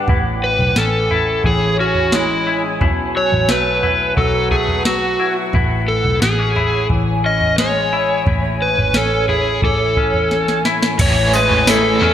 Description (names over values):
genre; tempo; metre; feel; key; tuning
dream pop; 88 BPM; 4/4; straight; A major; A4 = 442 Hz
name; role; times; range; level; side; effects
granular cloud pad; sustained chords; 0.0-12.1 s; B4 to G#5; -23 LUFS; right 3 dB; built-in reverb, lush chorus
semi-hollow electric guitar; arpeggios; 0.0-12.1 s; A2 to E4; -21 LUFS; left 4 dB; wide subtle chorus, digital delay
vintage muted picked electric bass; bass; 0.1-12.1 s; G#1 to E2; -22 LUFS; equal; none
soft vintage rhythm box; drums; 0.1-12.1 s; crash cymbal, kick drum, snare drum, tambourine, toms; -20 LUFS; right 1 dB; gated reverb
overdriven slide guitar; melody; 0.4-12.1 s; E4 to D#5; -18 LUFS; equal; digital delay
overdriven semi-hollow guitar; accompaniment; 11.0-12.1 s; A2 to E4; -18 LUFS; right 2 dB; tremolo, ensemble chorus
room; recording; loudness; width
moderate plate reverb, RT60 2.7 s; bright 1980s-style digital production; -14 LUFS; side -10 dB against mid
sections
0.0-11.0 A section; 11.0-12.1 B section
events
drum fill 10.3-11.0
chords
0.1 Amaj7; 2.8 B7sus4; 5.5 Amaj7